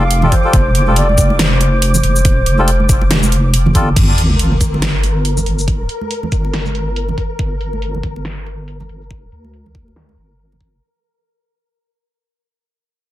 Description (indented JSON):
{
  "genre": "deep dubstep",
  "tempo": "140 BPM",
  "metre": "4/4",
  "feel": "swing 58% on 16ths, half-time",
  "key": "G minor",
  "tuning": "A4 = 440 Hz",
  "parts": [
    { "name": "breathy reedy low ney", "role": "melody", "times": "0.0-3.5 s", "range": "C5 to F5", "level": "-21 LUFS", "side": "equal", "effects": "dub echo" },
    { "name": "melodica", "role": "stabs", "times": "0.0-3.9 s", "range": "G3 to A4", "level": "-21 LUFS", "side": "left 2 dB", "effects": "dub echo" },
    { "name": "deep soft wobble bass", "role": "bass", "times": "0.0-10.8 s", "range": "F1 to D2", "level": "-15 LUFS", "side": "equal", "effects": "chorus" },
    { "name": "flickering grainy texture", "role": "texture", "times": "0.0-10.8 s", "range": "Bb4 to D6", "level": "-26 LUFS", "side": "left 1 dB", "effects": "built-in reverb" },
    { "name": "dubstep drum kit", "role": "drums", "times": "0.1-10.7 s", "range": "crash cymbal, hi-hat, shaker, snare drum", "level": "-19 LUFS", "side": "right 1 dB", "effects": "overdrive, low-pass filter on hats, low-pass filter on perc, low-pass filter on snare, low-pass filter on cymbals, low-pass filter on room" },
    { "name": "congas", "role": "percussion", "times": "0.2-10.6 s", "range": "none", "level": "-23 LUFS", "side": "right 4 dB", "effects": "none" },
    { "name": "electronic kick drum", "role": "drums", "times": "0.3-10.7 s", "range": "none", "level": "-14 LUFS", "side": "equal", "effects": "overdrive" },
    { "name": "sub drop", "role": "sound effects", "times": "4.0-5.7 s", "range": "none", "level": "-20 LUFS", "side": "equal", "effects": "none" }
  ],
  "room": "digital ambience",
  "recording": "dense, heavily limited modern master",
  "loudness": "-12 LUFS",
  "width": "side -14 dB against mid",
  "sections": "0.0-4.0 A section; 4.0-10.8 B section",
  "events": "drop 0.0-4.0; fade-out 4.0-10.8; impact 4.0-5.7; filter sweep on drum 4.0-10.8",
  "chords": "0.0 Fadd9; 4.0 Gm",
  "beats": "0.11 | 0.54 0.96 1.39 1.82 | 2.25 2.68 3.11 3.54 | 3.96 4.39 4.82 5.25 | 5.68 6.11 6.54 6.96 | 7.39 7.82 8.25 8.68 | 9.11 9.54 9.96 10.39"
}